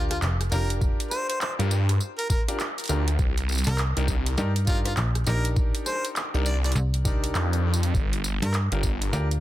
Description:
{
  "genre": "glitch hop",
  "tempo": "101 BPM",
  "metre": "4/4",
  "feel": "swing 62% on 16ths",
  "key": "G minor",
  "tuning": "A4 = 440 Hz",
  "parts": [
    { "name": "clear harmonica", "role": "melody", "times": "0.0-8.6 s", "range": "F4 to D5", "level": "-33 LUFS", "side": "equal", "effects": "ping-pong delay" },
    { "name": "bright grand piano", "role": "stabs", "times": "0.0-9.3 s", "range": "D4 to Bb4", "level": "-34 LUFS", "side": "left 1 dB", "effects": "sidechain pumping, ping-pong delay" },
    { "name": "slap-like FM bass", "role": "bass", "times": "0.0-9.4 s", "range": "F1 to G2", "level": "-25 LUFS", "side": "equal", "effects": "none" },
    { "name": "drum and bass drum kit", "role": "drums", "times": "0.1-9.4 s", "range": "handclaps, hi-hat, rim click, tambourine", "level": "-31 LUFS", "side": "right 1 dB", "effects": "none" },
    { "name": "electronic kick drum", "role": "drums", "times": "0.8-9.0 s", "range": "none", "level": "-25 LUFS", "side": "equal", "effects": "none" },
    { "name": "phased detuned saw bass", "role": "bass", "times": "1.6-9.1 s", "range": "G1 to G2", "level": "-24 LUFS", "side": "equal", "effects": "phaser, tube saturation" }
  ],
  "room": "little or no reverb",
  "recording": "dense, heavily limited modern master",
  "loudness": "-22 LUFS",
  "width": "side -14 dB against mid",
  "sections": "0.0-9.4 A section",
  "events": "none",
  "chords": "0.0 Gm7; 3.2 Cm7; 7.9 Gm7",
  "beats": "0.22 | 0.81 1.41 2.00 2.60 | 3.19 3.78 4.38 4.97 | 5.57 6.16 6.75 7.35 | 7.94 8.54 9.13"
}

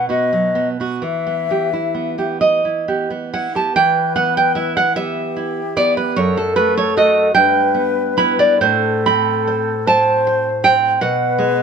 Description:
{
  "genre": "romantic duo for flute and classical guitar",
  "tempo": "43-55 BPM (dotted quarters)",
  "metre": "6/8",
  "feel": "rubato",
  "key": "E minor",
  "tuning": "A4 = 440 Hz",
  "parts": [
    { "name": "hollow concert flute", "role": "melody", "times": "0.0-11.6 s", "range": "G4 to E5", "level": "-20 LUFS", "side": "left 5 dB", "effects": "none" },
    { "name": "nylon-string guitar", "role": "accompaniment", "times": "0.0-11.6 s", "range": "F#2 to B5", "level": "-15 LUFS", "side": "right 3 dB", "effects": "none" }
  ],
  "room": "moderate stone room reverb, RT60 1.2 s",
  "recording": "band playing live in one room",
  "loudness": "-14 LUFS",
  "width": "side -6 dB against mid",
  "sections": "0.0-3.8 A section; 3.8-11.6 A section",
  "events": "none",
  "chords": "0.0 B; 1.0 Em; 6.2 F#m6; 7.3 Em/G; 8.6 Am; 11.0 G#m/B",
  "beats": "| 1.03 2.41 | 3.75 4.96 | 6.17 7.34 | 8.60 9.87 | 11.00"
}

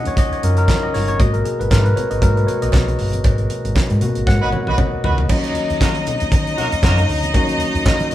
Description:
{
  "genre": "disco",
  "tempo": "117 BPM",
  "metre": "4/4",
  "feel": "swing 56% on 16ths",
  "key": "unclear",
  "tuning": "A4 = 437 Hz",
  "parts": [
    { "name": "bright tine electric piano", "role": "accompaniment", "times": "0.0-8.1 s", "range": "D#3 to G#5", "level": "-22 LUFS", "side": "left 1 dB", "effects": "none" },
    { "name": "mellow tonewheel organ", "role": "sustained chords", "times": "0.0-8.1 s", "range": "B2 to A#5", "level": "-27 LUFS", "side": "left 1 dB", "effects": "slow rotary speaker" },
    { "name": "hollow-body short-scale fingered electric bass", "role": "bass", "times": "0.1-8.1 s", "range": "G1 to D#3", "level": "-20 LUFS", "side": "equal", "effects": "none" },
    { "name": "damped 70s drum kit", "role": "drums", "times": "0.1-8.1 s", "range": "crash cymbal, handclaps, hi-hat, kick drum, snare drum, toms", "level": "-19 LUFS", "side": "equal", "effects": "none" },
    { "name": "congas", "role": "percussion", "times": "0.2-8.1 s", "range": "none", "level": "-31 LUFS", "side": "left 3 dB", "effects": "none" },
    { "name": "cowbell", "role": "percussion", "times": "0.2-8.0 s", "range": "none", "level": "-33 LUFS", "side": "right 3 dB", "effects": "none" },
    { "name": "dark horn section", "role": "stabs", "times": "4.4-7.9 s", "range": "A#3 to B4", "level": "-24 LUFS", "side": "right 1 dB", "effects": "none" },
    { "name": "clear studio string section", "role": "second line", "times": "5.3-8.1 s", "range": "D#4 to D#5", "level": "-22 LUFS", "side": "equal", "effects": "none" }
  ],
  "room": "moderate large studio reverb, RT60 0.8 s",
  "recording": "band playing live in one room",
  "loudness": "-15 LUFS",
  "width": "side -13 dB against mid",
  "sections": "0.0-5.3 A section; 5.3-8.1 B section",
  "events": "tine electric piano solo 0.0-5.3; band accent 3.2-5.3; drum fill 4.3-5.3",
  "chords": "0.0 D#m7; 1.2 G#m9; 5.3 D#m7",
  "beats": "0.17 0.68 | 1.19 1.71 2.22 2.73 | 3.25 3.76 4.27 4.78 | 5.30 5.81 6.32 6.83 | 7.34 7.86"
}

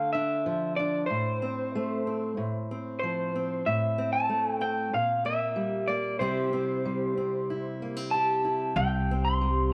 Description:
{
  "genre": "acoustic folk duo or small band",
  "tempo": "94 BPM",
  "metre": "4/4",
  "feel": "straight",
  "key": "unclear",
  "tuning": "A4 = 438 Hz",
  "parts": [
    { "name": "electric guitar through a small old amp", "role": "melody", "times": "0.0-9.7 s", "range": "C5 to C6", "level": "-31 LUFS", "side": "equal", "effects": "harmonic tremolo" },
    { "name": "fingerpicked steel-string acoustic guitar", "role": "accompaniment", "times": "0.0-9.7 s", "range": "A2 to G4", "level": "-33 LUFS", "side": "equal", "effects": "none" },
    { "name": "upright bass", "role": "bass", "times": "8.8-9.7 s", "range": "C2", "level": "-29 LUFS", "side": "equal", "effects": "none" }
  ],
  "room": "moderate echo chamber reverb, RT60 2.4 s",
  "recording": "none",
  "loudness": "-29 LUFS",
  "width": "mono",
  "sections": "0.0-9.7 A section",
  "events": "none",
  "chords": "0.0 Dm; 1.1 Am; 2.4 F/A; 3.6 Am; 4.9 Gm/Bb; 6.2 C",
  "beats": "0.44 | 1.08 1.72 2.36 3.00 | 3.64 4.28 4.92 5.56 | 6.20 6.84 7.49 8.13 | 8.77 9.41"
}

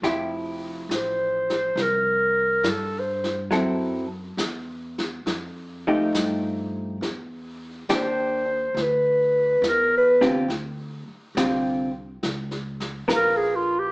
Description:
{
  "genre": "jazz ballad",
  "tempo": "69 BPM",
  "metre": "4/4",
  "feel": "swing 68% on 8ths",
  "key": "unclear",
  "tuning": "A4 = 439 Hz",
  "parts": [
    { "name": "vintage hollow-body jazz guitar", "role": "accompaniment", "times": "0.0-13.9 s", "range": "D3 to Bb4", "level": "-24 LUFS", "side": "equal", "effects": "none" },
    { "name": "upright bass", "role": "bass", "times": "0.0-13.9 s", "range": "F1 to G2", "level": "-34 LUFS", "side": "equal", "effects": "none" },
    { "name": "vintage brush drum kit", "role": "drums", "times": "0.0-13.9 s", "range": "brushed snare drum, hi-hat, snare drum", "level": "-30 LUFS", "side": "equal", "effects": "none" },
    { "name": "growling clarinet", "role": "melody", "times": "0.9-13.9 s", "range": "F4 to C5", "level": "-20 LUFS", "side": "equal", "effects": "none" }
  ],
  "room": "wet studio reverb, RT60 0.9 s",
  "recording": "heard from further back in the room, small speaker sound",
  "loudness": "-21 LUFS",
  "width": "side -25 dB against mid",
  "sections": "0.0-13.9 A section",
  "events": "clarinet solo 0.0-13.9",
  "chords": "0.0 Fmaj9; 3.5 F#m7b5; 5.3 F9; 7.0 Em7; 10.5 Dm7; 12.2 Db6",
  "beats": "| 0.04 0.91 1.78 2.65 | 3.52 4.39 5.26 6.14 | 7.02 7.89 8.76 9.63 | 10.50 11.36 12.23 13.09"
}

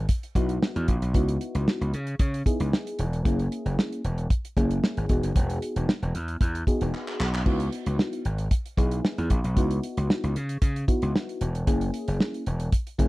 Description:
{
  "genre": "early-eighties boogie funk",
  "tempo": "114 BPM",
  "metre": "4/4",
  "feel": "straight",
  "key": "C# dorian",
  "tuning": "A4 = 440 Hz",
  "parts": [
    { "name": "gritty slap bass", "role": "bass", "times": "0.0-13.1 s", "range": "E1 to C#3", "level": "-27 LUFS", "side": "equal", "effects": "overdrive" },
    { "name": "damped 70s drum kit", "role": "drums", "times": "0.1-13.1 s", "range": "crash cymbal, handclaps, hi-hat, kick drum, snare drum", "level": "-25 LUFS", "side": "equal", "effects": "none" },
    { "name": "mellow FM electric piano", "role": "accompaniment", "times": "0.4-13.1 s", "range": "A#3 to G#4", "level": "-30 LUFS", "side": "left 1 dB", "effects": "chorus" }
  ],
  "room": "little or no reverb",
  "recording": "dry, close 1970s-style studio recording",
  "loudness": "-24 LUFS",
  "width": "side -19 dB against mid",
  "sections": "0.0-13.1 A section",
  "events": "drum fill 6.9-7.5",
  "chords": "0.0 C#m11; 3.3 F#7; 5.1 Emaj9; 7.5 C#m11; 11.7 F#7",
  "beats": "0.10 0.62 | 1.15 1.67 2.20 2.73 | 3.25 3.78 4.31 4.83 | 5.36 5.88 6.41 6.94 | 7.46 7.99 8.52 9.04 | 9.57 10.10 10.62 11.15 | 11.67 12.20 12.73"
}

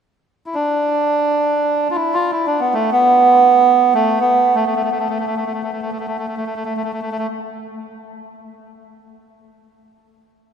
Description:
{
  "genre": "japanese traditional",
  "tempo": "free time",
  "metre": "none",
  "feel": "none",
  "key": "unclear",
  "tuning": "A4 = 441 Hz",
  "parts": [
    { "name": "melodica", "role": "melody", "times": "0.5-7.3 s", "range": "A3 to F4", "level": "-15 LUFS", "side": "right 2 dB", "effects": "none" }
  ],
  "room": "wet cathedral reverb, RT60 5.4 s",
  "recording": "recorded in a church or concert hall",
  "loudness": "-14 LUFS",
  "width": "side -7 dB against mid",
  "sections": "0.0-10.5 A section",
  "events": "none",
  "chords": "none",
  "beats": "free time"
}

